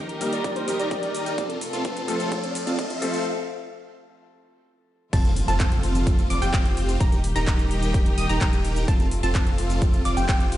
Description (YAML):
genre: EDM, festival progressive house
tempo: 128 BPM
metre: 4/4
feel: straight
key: F mixolydian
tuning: A4 = 440 Hz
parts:
  - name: dark chamber string section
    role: sustained chords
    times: 0.0-10.6 s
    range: C3 to Bb4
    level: -33 LUFS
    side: equal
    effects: sidechain pumping
  - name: big supersaw lead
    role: riff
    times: 0.0-10.6 s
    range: C4 to Eb5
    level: -29 LUFS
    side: right 1 dB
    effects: sidechain pumping, low-pass filter, ping-pong delay
  - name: riser and impact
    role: sound effects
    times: 0.1-7.0 s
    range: none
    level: -33 LUFS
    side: equal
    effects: none
  - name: big-room dance drum kit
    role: drums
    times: 0.1-10.6 s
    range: crash cymbal, handclaps, hi-hat, shaker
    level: -33 LUFS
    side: equal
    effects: none
  - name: bright baby grand piano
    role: accompaniment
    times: 0.2-3.3 s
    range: F3 to Bb4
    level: -29 LUFS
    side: left 2 dB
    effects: sidechain pumping, ping-pong delay
  - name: airy dreamy lead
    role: melody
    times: 0.3-1.4 s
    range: C5 to D5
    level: -31 LUFS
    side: left 1 dB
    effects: chorus, ping-pong delay
  - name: electronic kick drum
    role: drums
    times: 0.4-10.4 s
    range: none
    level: -23 LUFS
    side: equal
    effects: high-pass filter on kick, high-pass filter on room
  - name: wide unison pluck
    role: arpeggios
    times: 5.1-10.6 s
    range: G5 to Eb6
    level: -30 LUFS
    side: equal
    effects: sidechain pumping, ping-pong delay
  - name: saturated sub bass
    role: bass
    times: 5.1-10.6 s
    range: Eb1 to F1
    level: -26 LUFS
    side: equal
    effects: sidechain pumping
room: light reverb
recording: played on a big sound system in a bare room, stone room reverb, high-pass filter, nothing above 10.8 kHz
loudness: -21 LUFS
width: side -14 dB against mid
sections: 0.0-5.1 A section; 5.1-10.6 B section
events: build-up 0.0-5.1; riser 0.1-3.3; drum fill 1.4-3.3; break 3.3-5.1; drop 5.1-10.6; impact 5.1-7.0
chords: 0.0 Eb; 1.4 F; 3.3 N.C.; 5.1 F; 7.0 Eb; 8.9 F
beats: 0.44 0.91 | 1.38 1.85 2.32 2.79 | 3.25 3.72 4.19 4.66 | 5.13 5.60 6.07 6.54 | 7.00 7.47 7.94 8.41 | 8.88 9.35 9.82 10.29